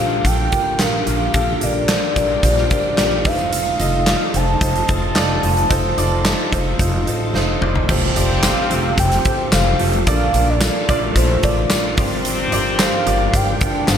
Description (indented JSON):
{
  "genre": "piano-driven pop",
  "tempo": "110 BPM",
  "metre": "4/4",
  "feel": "straight",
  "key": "unclear",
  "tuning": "A4 = 439 Hz",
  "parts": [
    { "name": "warm velvety synth lead", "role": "melody", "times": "0.0-14.0 s", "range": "C5 to A5", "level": "-22 LUFS", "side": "equal", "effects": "chorus" },
    { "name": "warm upright piano", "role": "accompaniment", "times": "0.0-14.0 s", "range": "G2 to F5", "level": "-23 LUFS", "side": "right 2 dB", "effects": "wide subtle chorus" },
    { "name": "bright tonewheel organ", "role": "sustained chords", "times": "0.0-14.0 s", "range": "C3 to G4", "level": "-30 LUFS", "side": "equal", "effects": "chorus vibrato, slow rotary speaker" },
    { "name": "upright bass", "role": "bass", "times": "0.0-14.0 s", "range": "F1 to Bb1", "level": "-21 LUFS", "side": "equal", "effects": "none" },
    { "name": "huge arena drum kit", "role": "drums", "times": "0.2-14.0 s", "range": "crash cymbal, handclaps, hi-hat, kick drum, snare drum, toms", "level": "-19 LUFS", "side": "equal", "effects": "gated reverb" },
    { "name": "muted French horn section", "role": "second line", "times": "7.9-14.0 s", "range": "A2 to D4", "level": "-25 LUFS", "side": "left 4 dB", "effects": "ping-pong delay" },
    { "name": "impact", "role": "sound effects", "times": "7.9-10.1 s", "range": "none", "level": "-28 LUFS", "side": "equal", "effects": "none" },
    { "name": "tambourine", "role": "percussion", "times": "8.4-14.0 s", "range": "none", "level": "-30 LUFS", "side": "left 8 dB", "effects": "none" }
  ],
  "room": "moderate lush hall reverb, RT60 1.9 s",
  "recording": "bright 1980s-style digital production",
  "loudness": "-15 LUFS",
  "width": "side -8 dB against mid",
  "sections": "0.0-7.9 A section; 7.9-14.0 B section",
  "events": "drum fill 7.3-7.9; impact 7.9-10.1",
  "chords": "0.0 Bb6; 3.3 F7; 7.9 Fadd9; 10.1 Bbmaj7; 12.0 Gm7"
}